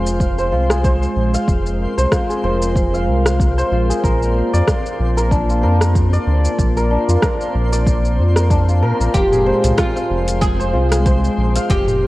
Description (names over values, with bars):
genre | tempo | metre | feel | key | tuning
organic downtempo | 94 BPM | 4/4 | swing 56% on 16ths | F dorian | A4 = 440 Hz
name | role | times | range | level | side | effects
warm analog pad | sustained chords | 0.0-12.1 s | Ab3 to D5 | -23 LUFS | equal | chorus, sidechain pumping
santur | arpeggios | 0.0-12.1 s | D4 to F5 | -21 LUFS | equal | digital delay
round analog bass | bass | 0.0-12.1 s | F1 to Bb2 | -17 LUFS | equal | none
twinkling granular texture | texture | 0.0-12.1 s | C4 to C5 | -31 LUFS | equal | built-in reverb
deep house drum kit | drums | 0.1-12.0 s | hi-hat, rim click, shaker | -24 LUFS | equal | overdrive
electronic kick drum | drums | 0.2-11.8 s | none | -18 LUFS | equal | overdrive
oud | melody | 9.1-12.1 s | F4 to Ab4 | -20 LUFS | equal | none
darbuka | percussion | 9.3-12.0 s | none | -26 LUFS | left 1 dB | none
room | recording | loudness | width
moderate lush hall reverb, RT60 2.3 s | worn, warbling old tape, cassette tape, warbly pitch drift | -14 LUFS | side -18 dB against mid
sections
0.0-12.1 A section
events
none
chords
0.0 Fm; 4.0 Bb; 9.1 Fm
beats
0.21 0.84 | 1.48 2.12 2.76 3.40 | 4.04 4.67 5.31 5.95 | 6.59 7.23 7.87 8.50 | 9.14 9.78 10.42 11.06 | 11.70